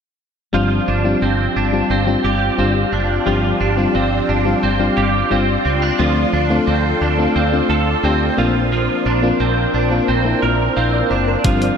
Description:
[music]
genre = 1980s-style pop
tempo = 88 BPM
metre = 4/4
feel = straight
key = unclear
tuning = A4 = 440 Hz
[part]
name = FM electric piano with tremolo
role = accompaniment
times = 0.5-11.8 s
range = G3 to F5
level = -19 LUFS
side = left 4 dB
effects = none
[part]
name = string machine, violas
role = sustained chords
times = 0.5-11.8 s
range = G4 to C6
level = -23 LUFS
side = right 1 dB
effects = phaser, ensemble chorus
[part]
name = twelve-string electric guitar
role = riff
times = 0.5-11.8 s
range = F3 to Bb4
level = -20 LUFS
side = right 4 dB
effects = ensemble chorus, digital delay
[part]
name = mellow fretless electric bass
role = bass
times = 0.5-11.7 s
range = F#1 to D2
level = -20 LUFS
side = equal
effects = wide subtle chorus
[part]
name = gated 80s digital drum machine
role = drums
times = 11.4-11.8 s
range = hi-hat, kick drum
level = -17 LUFS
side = equal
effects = overdrive
[sound]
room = wet lush hall reverb, RT60 1.9 s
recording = bright 1980s-style digital production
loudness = -14 LUFS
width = side -7 dB against mid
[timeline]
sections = 0.5-11.8 A section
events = none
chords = 0.5 G7sus4; 6.0 Dm7; 8.4 Bbadd9

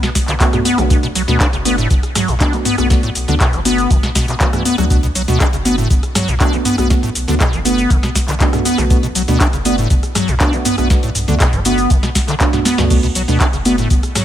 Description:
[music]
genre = acid house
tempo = 120 BPM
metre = 4/4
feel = straight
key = B minor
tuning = A4 = 441 Hz
[part]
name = acid bass, square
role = riff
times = 0.0-14.2 s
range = A2 to D4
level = -18 LUFS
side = equal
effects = analog chorus, dub echo
[part]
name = booming analog drum machine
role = drums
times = 0.0-14.2 s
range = crash cymbal, handclaps, hi-hat, rim click, shaker, snare drum, toms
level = -19 LUFS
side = equal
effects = studio reverb
[part]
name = electronic kick drum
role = drums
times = 0.2-14.0 s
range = none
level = -16 LUFS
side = equal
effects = studio reverb
[part]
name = warm sub bass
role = bass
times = 0.3-14.0 s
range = F#1 to D2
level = -20 LUFS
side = equal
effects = sidechain pumping
[part]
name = deep mellow chord stab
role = stabs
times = 0.4-13.8 s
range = A3 to F#4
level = -22 LUFS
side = right 3 dB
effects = chorus, phaser, dub echo
[sound]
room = little or no reverb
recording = none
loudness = -12 LUFS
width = side -11 dB against mid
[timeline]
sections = 0.0-14.2 A section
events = drum fill 12.5-12.9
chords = 0.0 Bm7

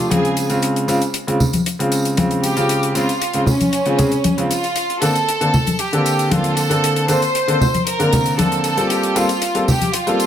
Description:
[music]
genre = nu-disco, nu disco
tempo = 116 BPM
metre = 4/4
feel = straight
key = unclear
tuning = A4 = 440 Hz
[part]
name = clear studio violin section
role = melody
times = 0.0-10.3 s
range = Db4 to C5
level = -20 LUFS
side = right 1 dB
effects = tape echo
[part]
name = bright baby grand piano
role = accompaniment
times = 0.0-10.3 s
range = Db3 to Bb4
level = -19 LUFS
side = equal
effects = none
[part]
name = hi-hat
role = drums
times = 0.1-10.3 s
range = none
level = -25 LUFS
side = left 5 dB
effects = studio ambience
[part]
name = tambourine and congas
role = percussion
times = 0.1-10.3 s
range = none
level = -21 LUFS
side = left 1 dB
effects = none
[sound]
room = light reverb, studio reverb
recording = none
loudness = -15 LUFS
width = side -10 dB against mid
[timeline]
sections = 0.0-10.3 A section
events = none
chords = 0.4 Dbmaj7; 4.8 Bbmaj9; 8.9 Gm11

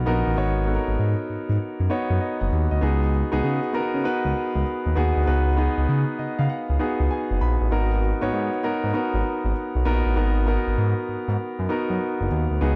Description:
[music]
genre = R&B, new jack swing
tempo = 98 BPM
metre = 4/4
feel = swing 64% on 16ths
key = G# minor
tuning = A4 = 440 Hz
[part]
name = warm concert grand piano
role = accompaniment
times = 0.0-12.8 s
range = A#3 to B5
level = -27 LUFS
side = equal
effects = none
[part]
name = smooth synth bass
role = bass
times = 0.0-12.8 s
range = F#1 to C#3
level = -25 LUFS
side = equal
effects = none
[sound]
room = light reverb, small room reverb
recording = dark, warm production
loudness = -23 LUFS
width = mono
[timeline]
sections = 0.0-12.8 A section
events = grand piano fill 5.9-7.7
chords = 0.0 G#m7

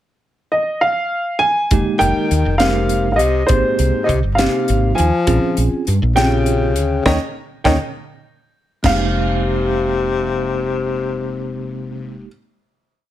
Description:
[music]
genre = electric jazz fusion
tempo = 67 BPM (dotted quarters)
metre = 6/8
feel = straight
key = F minor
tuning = A4 = 438 Hz
[part]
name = dark baby grand piano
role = melody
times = 0.5-12.3 s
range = C5 to Ab5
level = -19 LUFS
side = right 1 dB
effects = slapback echo
[part]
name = bell-like tine electric piano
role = accompaniment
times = 1.7-12.3 s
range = Ab3 to Bb4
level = -23 LUFS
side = right 3 dB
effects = fast stereo tremolo
[part]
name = woody fretless electric bass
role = bass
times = 1.7-12.3 s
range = F1 to G2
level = -19 LUFS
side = equal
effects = ensemble chorus
[part]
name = crisp fusion drum kit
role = drums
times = 1.7-9.0 s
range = crash cymbal, hi-hat, kick drum, snare drum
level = -22 LUFS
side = equal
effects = none
[part]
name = breathy tenor saxophone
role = second line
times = 2.0-12.3 s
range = Ab2 to F3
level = -21 LUFS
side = left 5 dB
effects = none
[sound]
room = light reverb, small room ambience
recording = none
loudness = -15 LUFS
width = side -12 dB against mid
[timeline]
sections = 0.0-1.7 pickup bar; 1.7-8.8 A section; 8.8-12.4 final chord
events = band accent 7.1-8.8; drum fill 8.5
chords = 0.0 N.C.; 1.7 Fm11; 3.5 Abmaj9; 5.3 Bbm9; 7.1 Eb7(no3); 8.8 Fm11

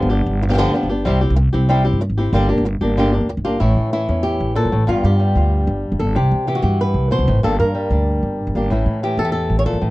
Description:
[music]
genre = flamenco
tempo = 188 BPM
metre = 4/4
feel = straight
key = unclear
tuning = A4 = 439 Hz
[part]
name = flamenco guitar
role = melody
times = 0.0-9.9 s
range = G2 to C#5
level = -19 LUFS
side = equal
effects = none
[part]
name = upright bass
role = bass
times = 0.0-9.9 s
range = G1 to C3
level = -18 LUFS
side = equal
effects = none
[sound]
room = little or no reverb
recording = dry, close 1970s-style studio recording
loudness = -15 LUFS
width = side -18 dB against mid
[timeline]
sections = 0.0-3.6 A section; 3.6-9.9 B section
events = none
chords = 0.0 G7; 1.1 C; 2.3 Gm; 3.6 A; 4.9 G7; 6.2 C; 7.4 Gm; 8.7 A

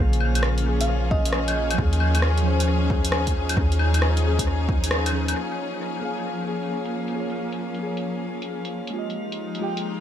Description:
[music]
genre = future garage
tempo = 134 BPM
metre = 4/4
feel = swing 67% on 16ths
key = Bb dorian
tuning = A4 = 445 Hz
[part]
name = muted felt-like synth keys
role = accompaniment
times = 0.0-10.0 s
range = Db3 to G5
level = -30 LUFS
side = equal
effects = chorus, sidechain pumping, tape echo
[part]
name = clear symphonic string section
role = sustained chords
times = 0.0-10.0 s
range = F3 to Ab4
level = -28 LUFS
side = left 2 dB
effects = sidechain pumping
[part]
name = soft 808-style bass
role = bass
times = 0.0-5.3 s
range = Bb1 to Eb2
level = -22 LUFS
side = equal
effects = sidechain pumping
[part]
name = drifting glass-harmonics texture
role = texture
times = 0.0-10.0 s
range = F4 to F5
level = -37 LUFS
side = equal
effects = chorus, built-in reverb
[part]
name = deep house drum kit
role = drums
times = 0.1-9.8 s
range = claves, hi-hat, rim click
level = -28 LUFS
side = left 1 dB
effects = low-pass filter on hats, low-pass filter on perc, low-pass filter on snare, low-pass filter on room, dub echo
[part]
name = bell-like FM electric piano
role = melody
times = 0.8-1.8 s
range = Eb5 to F5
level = -32 LUFS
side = right 2 dB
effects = chorus, cassette tape, dub echo
[part]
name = electronic kick drum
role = drums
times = 1.1-4.8 s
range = none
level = -24 LUFS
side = equal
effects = none
[sound]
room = light reverb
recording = echo-heavy mix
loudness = -21 LUFS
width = side -10 dB against mid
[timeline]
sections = 0.0-5.4 A section; 5.4-10.0 B section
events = band accent 4.9; filter sweep on drum 5.4-10.0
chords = 0.0 Bbm7; 1.8 Eb9sus4; 5.4 Bbm7; 8.9 Fm9

